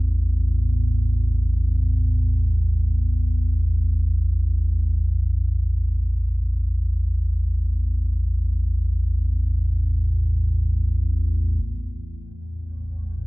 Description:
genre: dark ambient drone.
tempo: free time.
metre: none.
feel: none.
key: unclear.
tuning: A4 = 440 Hz.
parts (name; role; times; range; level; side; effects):
deep rumbling drone; drone; 0.0-13.3 s; A1 to E2; -20 LUFS; equal; built-in reverb, wide subtle chorus.
granular cloud pad; sustained chords; 12.3-13.3 s; A2 to E3; -41 LUFS; left 1 dB; built-in reverb.
room: light reverb.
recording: dark, warm production.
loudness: -20 LUFS.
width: side -24 dB against mid.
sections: 0.0-11.6 A section; 11.6-13.3 B section.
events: filter sweep on synth drone 11.6-13.3.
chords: 0.0 A5.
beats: free time.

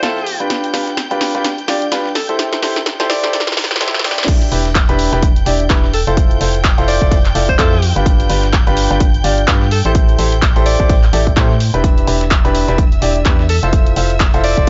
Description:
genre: piano house.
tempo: 127 BPM.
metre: 4/4.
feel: swing 58% on 16ths.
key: A minor.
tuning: A4 = 439 Hz.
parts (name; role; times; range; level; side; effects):
bright alto saxophone; melody; 0.0-14.7 s; A4 to D5; -23 LUFS; equal; analog delay.
rich studio violin section; sustained chords; 0.0-14.7 s; E5 to G6; -30 LUFS; equal; sidechain pumping, low-pass filter.
clear baby grand piano; riff; 0.0-14.7 s; D4 to D5; -21 LUFS; equal; sidechain pumping, low-pass filter.
organ-like FM bass; bass; 0.0-14.7 s; E1 to A2; -19 LUFS; equal; sidechain pumping, high-pass filter.
dusty soul sampler-style drum kit; drums; 0.0-14.7 s; hi-hat, snare drum; -35 LUFS; equal; none.
punchy analog drum machine; drums; 0.0-14.7 s; crash cymbal, handclaps, hi-hat, snare drum; -22 LUFS; equal; none.
electronic kick drum; drums; 4.3-14.7 s; none; -16 LUFS; equal; none.
room: light reverb.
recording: dry, gritty hardware recording, cassette tape, high-pass filter, nothing above 7.7 kHz.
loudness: -14 LUFS.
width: mono.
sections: 0.0-4.3 A section; 4.3-14.7 B section.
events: build-up 0.0-4.3; drum fill 0.0-4.3; filter sweep 0.0-4.3; drop 4.3-14.7.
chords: 0.0 Fmaj7; 0.5 G7; 2.2 Am7; 4.3 Em7; 6.2 Fmaj7; 8.1 G7; 9.7 Am7; 11.8 Em7; 13.7 Fmaj7.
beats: 0.03 | 0.50 0.97 1.45 1.92 | 2.39 2.86 3.33 3.81 | 4.28 4.75 5.22 5.70 | 6.17 6.64 7.12 7.59 | 8.06 8.53 9.01 9.48 | 9.95 10.42 10.89 11.37 | 11.84 12.31 12.78 13.26 | 13.73 14.20 14.67.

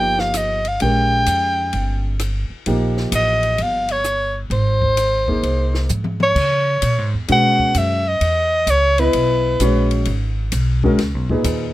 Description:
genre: modal jazz.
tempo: 130 BPM.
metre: 4/4.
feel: swing 67% on 8ths.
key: C# dorian from 6.4 s.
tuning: A4 = 445 Hz.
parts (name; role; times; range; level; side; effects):
warm soprano saxophone; melody; 0.0-9.9 s; B4 to G5; -18 LUFS; equal; none.
warm grand piano; accompaniment; 0.0-11.7 s; A#2 to D#5; -21 LUFS; equal; none.
upright bass; bass; 0.0-11.7 s; G1 to C#3; -20 LUFS; equal; none.
compact cocktail drum kit; drums; 0.2-11.6 s; crash cymbal, hi-hat, kick drum, ride cymbal, rim click, snare drum, toms; -28 LUFS; left 2 dB; none.
room: little or no reverb.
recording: close, detailed microphones.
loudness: -16 LUFS.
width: side -16 dB against mid.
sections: 0.0-6.4 A section; 6.4-11.7 B section.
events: drum fill 5.9-6.4.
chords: 0.0 Eb; 4.5 Ab; 6.4 C#m9; 10.1 C#7sus2.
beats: 0.34 | 0.81 1.27 1.73 2.20 | 2.66 3.12 3.59 4.05 | 4.51 4.98 5.44 5.90 | 6.37 6.83 7.29 7.75 | 8.22 8.68 9.14 9.60 | 10.07 10.53 10.99 11.45.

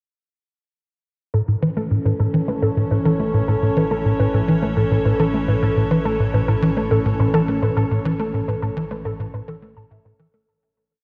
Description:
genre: ambient, sequencer-driven space music.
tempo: 105 BPM.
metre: 4/4.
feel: straight.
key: A major.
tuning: A4 = 440 Hz.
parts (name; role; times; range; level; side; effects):
evolving wavetable pad; sustained chords; 1.3-10.5 s; E3 to C#5; -26 LUFS; equal; chorus, built-in reverb.
warbly dusty pluck; arpeggios; 1.3-10.5 s; A4 to A5; -29 LUFS; equal; chorus, delay.
tight sequencer bass; riff; 1.3-10.5 s; A2 to A3; -22 LUFS; equal; ensemble chorus, delay.
analog drone; bass; 2.9-10.5 s; A1; -35 LUFS; equal; chorus.
room: wet lush hall reverb, RT60 2.8 s.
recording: dark, warm production.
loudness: -20 LUFS.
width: mono.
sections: 1.3-10.5 A section.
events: fade-in on synth drone 1.3-10.5; fade-out 7.4-10.5.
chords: 1.3 A.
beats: | 1.34 1.91 2.48 3.05 | 3.62 4.20 4.77 5.34 | 5.91 6.48 7.05 7.62 | 8.20 8.77 9.34 9.91.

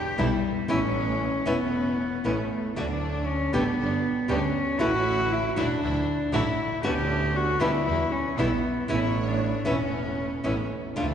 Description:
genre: tango.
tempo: 117 BPM.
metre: 4/4.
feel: rubato.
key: unclear.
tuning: A4 = 440 Hz.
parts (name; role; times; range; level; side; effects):
warm cello; second line; 0.0-11.1 s; G3 to G4; -27 LUFS; left 1 dB; none.
flamenco guitar; accompaniment; 0.2-11.1 s; B2 to G4; -30 LUFS; equal; none.
rich studio string section; stabs; 0.2-11.1 s; F3 to C#5; -33 LUFS; right 2 dB; none.
clear double bass; bass; 0.2-11.1 s; E1 to E2; -30 LUFS; right 2 dB; none.
room: wet church reverb, RT60 2.7 s.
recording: recorded in a church or concert hall, nothing above 10.5 kHz.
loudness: -23 LUFS.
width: side -8 dB against mid.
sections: 0.0-11.0 A section.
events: cello solo 0.0-11.0.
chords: 0.0 Em; 0.7 Aadd9; 2.8 D; 3.8 G; 4.8 A; 5.8 Dadd9; 6.8 Bmadd9/D; 7.9 Em; 8.9 Aadd9.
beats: 0.18 | 0.69 1.21 1.72 2.24 | 2.75 3.27 3.78 4.29 | 4.80 5.31 5.82 6.33 | 6.84 7.35 7.87 8.38 | 8.89 9.40 9.92 10.44 | 10.96.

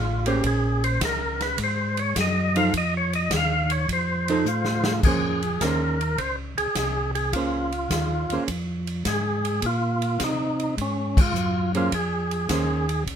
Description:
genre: soul jazz organ trio.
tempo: 104 BPM.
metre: 4/4.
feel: swing 69% on 8ths.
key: Bb minor.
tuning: A4 = 440 Hz.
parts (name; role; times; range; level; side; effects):
percussive tonewheel organ; melody; 0.0-13.0 s; Db4 to F5; -26 LUFS; equal; slow rotary speaker.
tonewheel organ; bass; 0.0-13.2 s; A1 to C3; -26 LUFS; equal; chorus vibrato.
archtop guitar, miked and amplified; accompaniment; 0.3-12.9 s; F3 to C5; -26 LUFS; right 4 dB; none.
swinging big-band drum kit; drums; 0.3-13.2 s; crash cymbal, hi-hat, kick drum, ride cymbal, snare drum; -28 LUFS; equal; none.
room: light reverb.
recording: minimal, uncompressed stereo recording.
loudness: -22 LUFS.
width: side -8 dB against mid.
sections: 0.0-5.0 A section; 5.0-13.2 B section.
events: tonewheel organ solo 0.0-5.0; drum fill 4.5-5.0; band accent 11.1.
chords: 0.4 Bbm9; 2.7 F7; 5.0 Bbm9.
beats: | 0.44 1.02 1.59 2.17 | 2.74 3.31 3.89 4.46 | 5.04 5.61 6.19 6.76 | 7.34 7.91 8.48 9.06 | 9.63 10.20 10.78 11.35 | 11.92 12.49 13.07.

